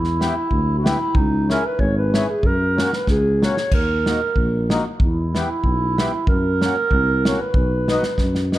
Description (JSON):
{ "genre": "alpine folk, alpine dance band", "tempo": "94 BPM", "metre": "2/4", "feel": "swing 55% on 8ths", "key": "unclear", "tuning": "A4 = 440 Hz", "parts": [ { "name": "dark clarinet", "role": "melody", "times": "0.0-8.5 s", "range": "D#4 to C#5", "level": "-22 LUFS", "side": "right 2 dB", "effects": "slapback echo" }, { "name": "dark tuba", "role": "bass", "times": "0.0-8.6 s", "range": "G#1 to F#2", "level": "-22 LUFS", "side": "equal", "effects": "none" }, { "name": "natural country drum kit", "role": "drums", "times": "0.0-8.6 s", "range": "crash cymbal, kick drum, snare drum", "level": "-21 LUFS", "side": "equal", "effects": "none" }, { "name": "mellow accordion", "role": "accompaniment", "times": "0.2-8.6 s", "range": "A#3 to G#4", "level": "-27 LUFS", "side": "left 3 dB", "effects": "none" } ], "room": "light reverb", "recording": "dark, warm production", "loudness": "-17 LUFS", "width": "side -15 dB against mid", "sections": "0.0-8.6 A section", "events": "drum fill 3.1-3.7, 8.2-8.6", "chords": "0.0 Em; 1.1 C#m; 2.4 F#; 3.7 D#m; 5.0 Em; 6.3 F#; 7.5 B" }